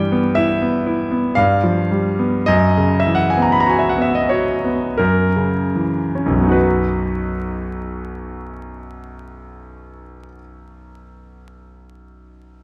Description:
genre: classical, romantic nocturne for solo piano.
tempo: 37-61 BPM.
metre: 3/4.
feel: rubato.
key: B major.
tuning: A4 = 440 Hz.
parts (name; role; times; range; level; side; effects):
clear concert grand piano; solo; 0.0-12.6 s; B1 to B5; -18 LUFS; equal; none.
room: moderate recital hall reverb, RT60 1.5 s.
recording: vinyl crackle.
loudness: -17 LUFS.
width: mono.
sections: 0.0-6.5 A section; 6.5-11.0 B section.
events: slowing down 0.0-6.5.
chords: 0.0 Em/G; 1.4 G7; 2.5 F#7sus4; 5.0 F#7; 6.5 B.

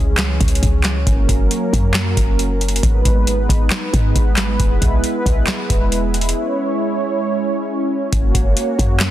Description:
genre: hip hop, trap.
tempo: 136 BPM.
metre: 4/4.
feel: half-time.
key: unclear.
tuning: A4 = 439 Hz.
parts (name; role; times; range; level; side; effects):
warm analog pad; sustained chords; 0.0-9.1 s; E3 to C#5; -20 LUFS; right 1 dB; chorus.
clean 808-style bass; bass; 0.0-9.1 s; E1 to G#2; -19 LUFS; equal; none.
booming analog drum machine; drums; 0.2-9.1 s; handclaps, hi-hat, kick drum, snare drum; -17 LUFS; equal; none.
room: digital ambience.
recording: dense, heavily limited modern master.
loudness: -15 LUFS.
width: side -13 dB against mid.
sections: 0.0-9.1 A section.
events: break 6.4-8.1.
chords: 0.0 C#m; 1.1 F#; 2.8 G#m; 4.6 E; 6.4 C#m; 8.1 F#.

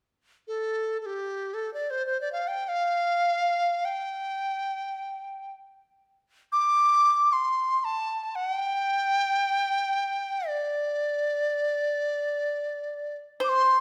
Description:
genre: chinese traditional, Chinese chamber ensemble.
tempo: free time.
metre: none.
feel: none.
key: D yu mode.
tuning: A4 = 441 Hz.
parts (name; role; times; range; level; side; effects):
large dizi; melody; 0.5-13.8 s; G4 to D6; -27 LUFS; equal; none.
pipa; second line; 13.4-13.8 s; C5; -30 LUFS; equal; none.
room: wet recital hall reverb, RT60 1.5 s.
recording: none.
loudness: -27 LUFS.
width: mono.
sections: 0.0-13.8 A section.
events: none.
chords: none.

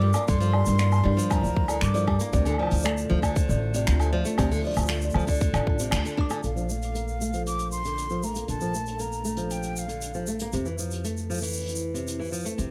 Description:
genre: folktronica.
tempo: 117 BPM.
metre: 4/4.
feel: straight.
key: unclear.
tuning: A4 = 440 Hz.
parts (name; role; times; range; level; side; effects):
breathy mellow silver concert flute; melody; 0.0-2.2, 6.5-10.3 s; F5 to D6; -36 LUFS; equal; digital delay.
kalimba; second line; 0.0-6.3 s; D5 to D6; -35 LUFS; equal; vintage 12-bit sampler grit, digital delay.
warbly tape-like pad; sustained chords; 0.0-12.7 s; G3 to D5; -41 LUFS; equal; chorus, built-in reverb.
flamenco guitar; arpeggios; 0.0-12.7 s; C3 to D4; -33 LUFS; equal; low-pass filter.
upright bass; bass; 0.0-12.7 s; A1 to G2; -29 LUFS; equal; none.
vintage brush drum kit; drums; 0.1-12.7 s; finger snaps, hi-hat, shaker, woodblock; -35 LUFS; equal; none.
electronic kick drum; drums; 0.3-6.3 s; none; -28 LUFS; equal; overdrive.
room: light reverb.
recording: none.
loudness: -26 LUFS.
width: mono.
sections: 0.0-6.4 A section; 6.4-12.7 B section.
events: band accent 5.9; filter sweep on nylon-string guitar 6.4-12.7.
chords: 0.0 Gm7; 2.3 Dm7; 6.4 Bbmaj7; 10.5 Fmaj7.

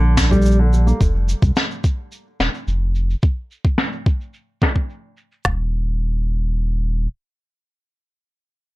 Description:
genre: folktronica.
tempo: 108 BPM.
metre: 4/4.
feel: straight.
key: unclear.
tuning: A4 = 440 Hz.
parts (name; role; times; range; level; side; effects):
warbly tape-like pad; sustained chords; 0.0-1.0 s; Bb3 to D5; -38 LUFS; right 6 dB; none.
picked steel-string acoustic guitar; arpeggios; 0.0-1.0 s; D3 to Bb3; -21 LUFS; equal; low-pass filter, tape echo.
warm sub bass; bass; 0.0-7.1 s; Eb1 to C2; -17 LUFS; equal; none.
organic electronic drum kit; drums; 0.2-5.6 s; kick drum, snare drum; -17 LUFS; equal; none.
snare drum and shaker; drums; 0.2-5.4 s; none; -21 LUFS; left 1 dB; low-pass filter on hats, low-pass filter on snare, low-pass filter on perc, low-pass filter on room.
room: little or no reverb.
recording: none.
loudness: -17 LUFS.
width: side -19 dB against mid.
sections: 0.0-5.4 A section; 5.4-7.7 B section.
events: filter sweep on drum 0.0-5.4; filter sweep on steel-string acoustic guitar 0.0-1.0.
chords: 0.0 Ebmaj7 (rootless); 1.0 F5; 5.4 N.C..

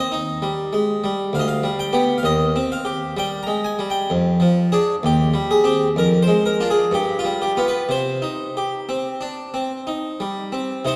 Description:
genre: classical, baroque-style suite movement for harpsichord.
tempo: 60-67 BPM.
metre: 3/4.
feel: rubato.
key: C minor.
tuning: A4 = 440 Hz.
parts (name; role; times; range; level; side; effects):
harpsichord; solo; 0.0-11.0 s; D2 to Bb5; -21 LUFS; equal; none.
room: wet church reverb, RT60 2.7 s.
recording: dark, warm production.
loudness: -21 LUFS.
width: mono.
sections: 0.0-10.8 A section.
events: none.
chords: 0.0 Cm (rootless); 1.3 G/D; 2.2 Cm/Eb; 4.1 Ddim/F; 5.0 Cm/Eb; 5.9 Ddim/F; 6.9 G7; 7.9 Cm.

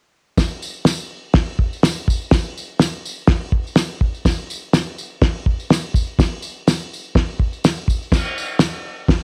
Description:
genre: rock.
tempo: 124 BPM.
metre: 4/4.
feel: straight.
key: none.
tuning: none.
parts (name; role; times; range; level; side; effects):
cloth-damped thuddy drum kit; drums; 0.4-9.2 s; crash cymbal, hi-hat, kick drum, snare drum; -18 LUFS; equal; none.
tambourine; percussion; 0.4-8.7 s; none; -33 LUFS; equal; none.
room: studio ambience.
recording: home recording on cassette.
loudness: -20 LUFS.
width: mono.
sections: 0.4-9.2 A section.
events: none.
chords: none.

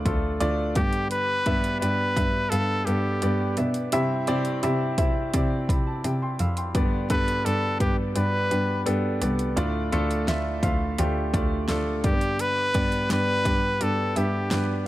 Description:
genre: piano-driven pop.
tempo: 85 BPM.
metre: 4/4.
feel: straight.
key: G mixolydian.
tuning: A4 = 440 Hz.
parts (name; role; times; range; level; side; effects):
clear upright piano; accompaniment; 0.0-14.9 s; G2 to E6; -27 LUFS; equal; none.
rich cello; bass; 0.1-14.8 s; C2 to C3; -27 LUFS; equal; none.
pop drum kit; drums; 0.1-14.7 s; hi-hat, kick drum, snare drum; -27 LUFS; equal; none.
bright trumpet; melody; 0.8-14.9 s; G4 to B4; -26 LUFS; equal; none.
room: studio ambience.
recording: none.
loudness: -22 LUFS.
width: side -15 dB against mid.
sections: 0.0-14.9 A section.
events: upright piano fill 5.3-6.8.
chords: 0.0 Dm; 0.8 G; 3.9 C; 6.8 G; 9.6 Dm; 12.0 G.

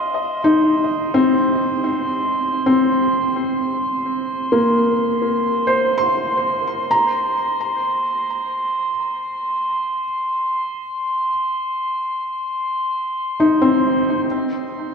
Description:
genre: ambient.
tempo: free time.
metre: none.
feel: none.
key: unclear.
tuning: A4 = 440 Hz.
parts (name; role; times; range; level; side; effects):
felt-muted upright piano; arpeggios; 0.0-14.9 s; Bb3 to C6; -18 LUFS; left 1 dB; ping-pong delay, shimmer reverb.
glass harmonica; texture; 0.0-14.9 s; C6; -22 LUFS; right 1 dB; shimmer reverb.
room: wet cathedral reverb, RT60 5.0 s.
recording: none.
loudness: -17 LUFS.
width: side -6 dB against mid.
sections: 0.0-14.3 A section.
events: none.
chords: 0.0 Bbsus24; 14.3 N.C..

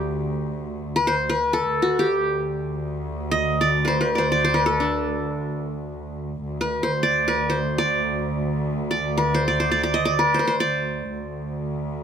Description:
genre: Turkish makam ensemble.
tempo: free time.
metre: none.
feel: none.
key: D makam hicaz.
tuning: A4 = 439 Hz.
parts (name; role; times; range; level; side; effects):
qanun; melody; 0.0-11.8 s; D4 to Eb5; -21 LUFS; equal; none.
warm chamber cello section; drone; 0.0-12.0 s; D2; -27 LUFS; equal; none.
room: moderate booth ambience, RT60 0.2 s.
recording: none.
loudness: -20 LUFS.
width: side -8 dB against mid.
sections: 0.0-6.4 A section; 6.4-12.0 A section.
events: none.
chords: none.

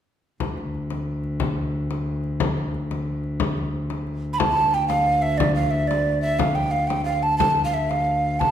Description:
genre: medieval dance.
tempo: 120 BPM (dotted quarters).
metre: 6/8.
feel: straight.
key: D minor.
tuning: A4 = 440 Hz.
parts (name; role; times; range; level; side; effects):
pedal harmonium; drone; 0.4-8.5 s; D2; -26 LUFS; left 1 dB; none.
frame drum; percussion; 0.4-8.5 s; none; -27 LUFS; left 4 dB; none.
breathy mellow tenor recorder; melody; 4.3-8.5 s; D5 to B5; -20 LUFS; right 2 dB; none.
room: wet recital hall reverb, RT60 1.5 s.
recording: recorded in a church or concert hall.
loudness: -21 LUFS.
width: side -9 dB against mid.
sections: 0.4-4.4 A section; 4.4-8.5 B section.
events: none.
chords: none.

